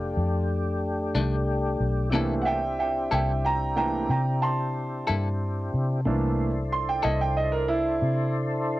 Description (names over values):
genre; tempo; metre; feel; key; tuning
slow blues; 61 BPM (dotted quarters); 12/8; straight; C mixolydian; A4 = 441 Hz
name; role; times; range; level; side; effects
bright upright piano; accompaniment; 0.0-8.3 s; E3 to C6; -27 LUFS; right 3 dB; cassette tape
tonewheel organ; sustained chords; 0.0-8.8 s; A3 to C5; -31 LUFS; left 2 dB; chorus vibrato, slow rotary speaker, cassette tape
vintage muted fingered electric bass; bass; 0.0-8.8 s; F1 to C3; -27 LUFS; equal; none
clean electric guitar; accompaniment; 1.1-7.2 s; F2 to A4; -28 LUFS; left 4 dB; tremolo, cassette tape
room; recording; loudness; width
light reverb; home recording on cassette; -23 LUFS; side -16 dB against mid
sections
0.0-8.8 A section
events
upright piano solo 0.0-8.8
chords
0.0 F69; 2.1 C13